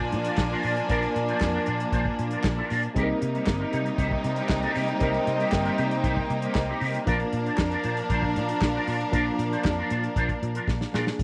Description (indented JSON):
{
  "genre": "disco",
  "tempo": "117 BPM",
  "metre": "4/4",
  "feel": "straight",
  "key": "unclear",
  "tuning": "A4 = 443 Hz",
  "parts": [
    { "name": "rich studio string section", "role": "second line", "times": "0.0-11.2 s", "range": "D4 to Ab5", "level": "-35 LUFS", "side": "equal", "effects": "none" },
    { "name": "barky reed electric piano", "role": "accompaniment", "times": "0.0-11.2 s", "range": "F3 to Bb4", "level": "-36 LUFS", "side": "equal", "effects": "overdrive, fast tremolo" },
    { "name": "electric guitar with an envelope filter", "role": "accompaniment", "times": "0.0-11.1 s", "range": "D4 to C5", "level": "-34 LUFS", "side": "equal", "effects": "ensemble chorus" },
    { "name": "clear studio string section", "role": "sustained chords", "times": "0.0-11.2 s", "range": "C3 to Eb4", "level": "-32 LUFS", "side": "equal", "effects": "none" },
    { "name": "fingered electric bass", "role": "bass", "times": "0.0-11.2 s", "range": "G1 to C3", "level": "-32 LUFS", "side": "equal", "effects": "none" },
    { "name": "warm soul drum kit", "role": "drums", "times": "0.1-11.2 s", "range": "handclaps, hi-hat, kick drum, snare drum", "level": "-31 LUFS", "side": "equal", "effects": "none" }
  ],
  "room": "light reverb, small room ambience",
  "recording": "none",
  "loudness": "-26 LUFS",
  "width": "mono",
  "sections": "0.0-11.2 A section",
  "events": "drum fill 10.7-11.2",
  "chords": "0.0 Bb; 3.0 Cm7; 7.1 Bb"
}